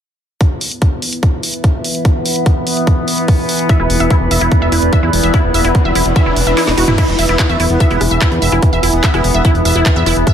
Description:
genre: psychedelic trance.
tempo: 146 BPM.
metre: 4/4.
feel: straight.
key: unclear.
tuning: A4 = 440 Hz.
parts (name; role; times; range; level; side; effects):
overtone-sweeping drone; sustained chords; 0.7-10.3 s; E3 to B3; -20 LUFS; left 1 dB; chorus, built-in reverb, sidechain pumping.
drum and bass drum kit; drums; 0.4-10.3 s; crash cymbal, handclaps, hi-hat, rim click, snare drum, toms; -19 LUFS; equal; overdrive.
electronic kick drum; drums; 0.4-10.3 s; none; -14 LUFS; equal; none.
warbly tape-like pad; texture; 1.4-10.3 s; E4 to B5; -20 LUFS; right 1 dB; chorus, built-in reverb, sidechain pumping.
wide unison pluck; riff; 3.7-10.3 s; E4 to E5; -18 LUFS; right 1 dB; auto-pan, sidechain pumping, ping-pong delay.
riser; sound effects; 5.2-7.0 s; none; -23 LUFS; equal; none.
fat analog bass; bass; 3.8-10.2 s; E1 to E2; -16 LUFS; equal; none.
metallic wobble bass; second line; 7.3-9.5 s; A3 to B3; -26 LUFS; left 2 dB; distortion, ensemble chorus, sidechain pumping, high-pass filter, tape echo.
room: light reverb.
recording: none.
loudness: -11 LUFS.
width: side -9 dB against mid.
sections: 0.4-7.0 A section; 7.0-10.3 B section.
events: riser 5.2-7.0; kick drops out 6.6-7.0; drum fill 6.6-7.0.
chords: 0.4 E5.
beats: | 0.41 0.82 1.23 1.64 | 2.05 2.46 2.87 3.28 | 3.69 4.11 4.52 4.93 | 5.34 5.75 6.16 6.57 | 6.98 7.39 7.80 8.21 | 8.63 9.04 9.45 9.86 | 10.27.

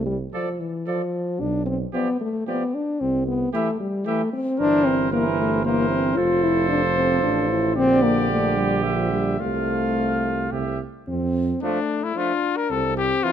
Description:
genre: classical, brass quintet.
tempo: 112 BPM.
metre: 3/4.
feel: rubato.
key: C major, F major from 4.6 s.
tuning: A4 = 442 Hz.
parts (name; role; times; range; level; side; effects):
mellow French horn; accompaniment; 0.0-13.3 s; E3 to F4; -23 LUFS; left 2 dB; none.
warm tuba; bass; 0.0-13.1 s; F1 to F2; -27 LUFS; right 5 dB; none.
warm trumpet; melody; 0.3-13.3 s; D4 to F5; -27 LUFS; left 8 dB; none.
clear trumpet; second line; 0.3-13.3 s; A3 to Bb4; -29 LUFS; right 9 dB; none.
clear trombone; accompaniment; 0.3-13.3 s; C3 to F3; -28 LUFS; right 6 dB; none.
room: light reverb.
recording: close, detailed microphones.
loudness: -20 LUFS.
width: side -9 dB against mid.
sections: 0.0-11.1 A section; 11.1-13.3 B section.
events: none.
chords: 0.0 Dm7/C; 1.4 G7/B (rootless); 3.0 C; 4.6 C7/G; 6.2 F; 7.8 Gm/Bb; 9.4 F/C; 11.1 F; 12.7 C.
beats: 0.33 0.86 | 1.40 1.93 2.47 | 3.01 3.54 4.07 | 4.60 5.13 5.65 | 6.18 6.70 7.23 | 7.76 8.30 8.84 | 9.40 9.96 10.52 | 11.08 11.62 12.16 | 12.70 13.23.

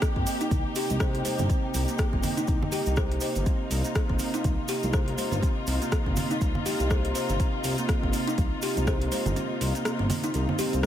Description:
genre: afro house.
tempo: 122 BPM.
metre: 4/4.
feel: swing 58% on 16ths.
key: C minor pentatonic.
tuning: A4 = 441 Hz.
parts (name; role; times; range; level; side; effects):
dark studio string section; sustained chords; 0.0-10.9 s; C3 to G4; -32 LUFS; left 3 dB; sidechain pumping.
deep house drum kit; drums; 0.0-10.9 s; hi-hat, rim click; -34 LUFS; equal; overdrive.
electronic kick drum; drums; 0.0-9.0 s; none; -26 LUFS; equal; none.
cabasa; percussion; 0.0-10.9 s; none; -40 LUFS; right 4 dB; none.
congas; percussion; 0.0-10.9 s; none; -35 LUFS; right 2 dB; none.
kalimba; arpeggios; 0.2-10.9 s; Bb3 to C5; -31 LUFS; right 2 dB; sidechain pumping, ping-pong delay.
smooth synth bass; bass; 0.2-10.9 s; G1 to C2; -29 LUFS; equal; sidechain pumping.
swell; sound effects; 10.5-10.9 s; none; -34 LUFS; left 5 dB; none.
room: light reverb.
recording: none.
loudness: -24 LUFS.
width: side -11 dB against mid.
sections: 0.0-10.9 A section.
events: kick drops out 9.4-10.9; swell 10.5-10.9.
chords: 0.0 Cm7.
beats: 0.02 0.51 1.00 | 1.50 1.99 2.48 2.97 | 3.46 3.95 4.45 4.94 | 5.43 5.92 6.41 6.91 | 7.40 7.89 8.38 8.87 | 9.36 9.86 10.35 10.84.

